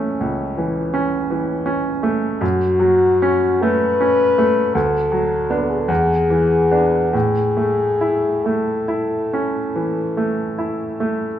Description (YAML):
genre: classical, romantic duo for French horn and grand piano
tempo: 46-56 BPM (dotted quarters)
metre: 12/8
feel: rubato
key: A major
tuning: A4 = 439 Hz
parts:
  - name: mellow French horn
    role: melody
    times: 0.0-11.4 s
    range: C#4 to B4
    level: -19 LUFS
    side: left 2 dB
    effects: none
  - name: bright grand piano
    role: accompaniment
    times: 0.0-11.4 s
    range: C#2 to E4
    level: -19 LUFS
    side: right 2 dB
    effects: none
room: moderate recital hall reverb, RT60 1.8 s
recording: minimal, uncompressed stereo recording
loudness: -16 LUFS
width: side -10 dB against mid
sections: 0.0-11.4 A section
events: none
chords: 0.0 A/C#; 2.4 F#m; 4.8 Bm7/D; 5.9 E7; 7.1 A